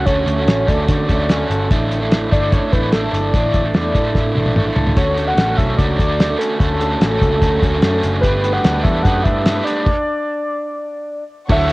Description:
jangly indie pop; 147 BPM; 4/4; straight; D major; A4 = 443 Hz
soft octave-layered synth lead; melody; 0.0-11.7 s; A4 to F#5; -21 LUFS; equal; chorus, cassette tape
crunchy overdriven guitar; accompaniment; 0.0-11.7 s; A2 to C#5; -20 LUFS; right 2 dB; harmonic tremolo, cassette tape
electric guitar through a small old amp; arpeggios; 0.0-11.7 s; A2 to A4; -27 LUFS; left 3 dB; cassette tape
vintage muted picked electric bass; bass; 0.0-11.7 s; F#1 to D3; -21 LUFS; equal
cloth-damped thuddy drum kit; drums; 0.1-11.7 s; crash cymbal, hi-hat, kick drum, snare drum, toms; -17 LUFS; equal; cassette tape
warm studio string section; sustained chords; 11.5-11.7 s; A4 to C#6; -26 LUFS; left 1 dB; cassette tape
light reverb, studio ambience; home recording on cassette; -14 LUFS; side -21 dB against mid
0.0-5.0 A section; 5.0-11.5 B section
drum fill 4.2-5.0; stop 9.9-11.5
0.0 Dmaj7; 1.7 Asus4; 5.0 Dmaj7; 8.2 Gadd9
| 0.07 0.48 0.89 1.30 | 1.71 2.11 2.52 2.93 | 3.34 3.75 4.15 4.56 | 4.97 5.38 5.78 6.19 | 6.60 7.01 7.42 7.82 | 8.23 8.64 9.05 9.45 | 9.86 10.27 10.68 11.08 | 11.49

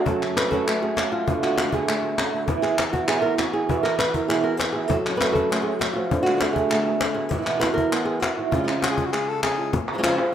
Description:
flamenco; 199 BPM; 4/4; straight; A4 = 437 Hz
flamenco guitar; melody; 0.0-10.3 s; C#3 to B4; -24 LUFS; equal
flamenco guitar; stabs; 0.1-9.7 s; E2 to F#4; -26 LUFS; right 6 dB
cajon; percussion; 0.1-10.3 s; -29 LUFS; left 4 dB
palmas hand claps; percussion; 0.2-10.3 s; -27 LUFS; left 1 dB
growling soprano saxophone; second line; 8.8-9.7 s; F#4 to A4; -27 LUFS; left 3 dB
moderate plate reverb, RT60 2.8 s; rough home demo mix; -20 LUFS; side -9 dB against mid
0.1-9.7 A section
0.1 F#m; 1.3 D6; 2.5 Esus2; 4.9 F#m; 6.1 D6; 7.3 Esus2; 8.5 C#
| 0.07 0.37 0.68 0.98 | 1.28 1.58 1.89 2.19 | 2.49 2.79 3.10 3.40 | 3.70 4.00 4.30 4.61 | 4.91 5.21 5.51 5.81 | 6.12 6.42 6.72 7.02 | 7.32 7.62 7.93 8.23 | 8.53 8.83 9.13 9.43 | 9.73 10.04 10.34

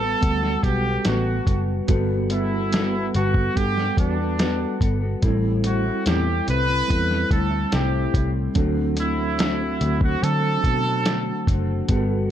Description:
indie pop, bedroom pop; 72 BPM; 4/4; straight; A4 = 443 Hz
bright trumpet; melody; 0.0-11.5 s; D4 to B4; -26 LUFS; right 2 dB; analog chorus, plate reverb, tape echo
mellow electric guitar; accompaniment; 0.0-12.3 s; A2 to A4; -28 LUFS; left 6 dB; wide subtle chorus, vibrato effect, plate reverb
mellow tine electric piano; accompaniment; 0.0-12.3 s; F#3 to F#5; -27 LUFS; right 3 dB; fast stereo tremolo, cassette tape, plate reverb
vintage muted picked electric bass; bass; 0.0-12.3 s; F#1 to D3; -24 LUFS; equal
lo-fi sampler-style drum kit; drums; 0.2-12.1 s; hi-hat, kick drum, snare drum; -23 LUFS; equal
moderate small room reverb, RT60 0.5 s; dark, warm production; -19 LUFS; side -10 dB against mid
0.0-12.3 A section
0.0 Gmaj9; 5.2 Am7; 8.6 D7
0.22 1.06 | 1.89 2.73 3.56 4.39 | 5.23 6.06 6.90 7.73 | 8.56 9.40 10.23 11.06 | 11.90

